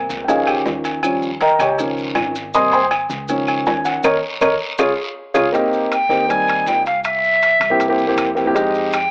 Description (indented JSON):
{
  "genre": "Afro-Cuban jazz",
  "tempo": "160 BPM",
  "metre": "4/4",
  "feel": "straight",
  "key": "Ab major",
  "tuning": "A4 = 440 Hz",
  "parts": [
    { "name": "warm grand piano", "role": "accompaniment", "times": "0.0-8.9 s", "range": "C3 to Eb6", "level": "-20 LUFS", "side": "equal", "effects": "cassette tape" },
    { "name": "upright bass", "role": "bass", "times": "0.0-9.1 s", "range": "Ab1 to F2", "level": "-37 LUFS", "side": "equal", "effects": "none" },
    { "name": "guiro", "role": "percussion", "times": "0.1-9.1 s", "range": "none", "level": "-34 LUFS", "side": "equal", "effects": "none" },
    { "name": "maracas", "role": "percussion", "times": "0.1-9.1 s", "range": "none", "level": "-38 LUFS", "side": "equal", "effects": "none" },
    { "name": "agogo bells and timbales", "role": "percussion", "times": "0.3-9.1 s", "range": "none", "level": "-26 LUFS", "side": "equal", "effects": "none" },
    { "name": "claves", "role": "percussion", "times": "0.5-9.1 s", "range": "none", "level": "-30 LUFS", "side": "equal", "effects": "none" },
    { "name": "breathy silver concert flute", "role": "melody", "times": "5.9-9.1 s", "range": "E5 to Ab5", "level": "-18 LUFS", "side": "equal", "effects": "none" }
  ],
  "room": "moderate spring reverb, RT60 1.3 s",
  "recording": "home recording on cassette, AM radio sound",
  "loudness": "-18 LUFS",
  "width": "mono",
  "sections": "0.0-5.5 A section; 5.5-9.1 B section",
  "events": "grand piano solo 0.0-5.5; band accent 4.0-5.5; drum fill 4.4-5.5",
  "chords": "0.3 Dbadd9; 1.0 Eb7; 1.8 Dbadd9; 2.5 Abmaj7; 3.3 Dbadd9; 4.0 Eb5; 4.8 Db; 5.5 Abmaj9; 7.0 C7; 8.6 Fm9"
}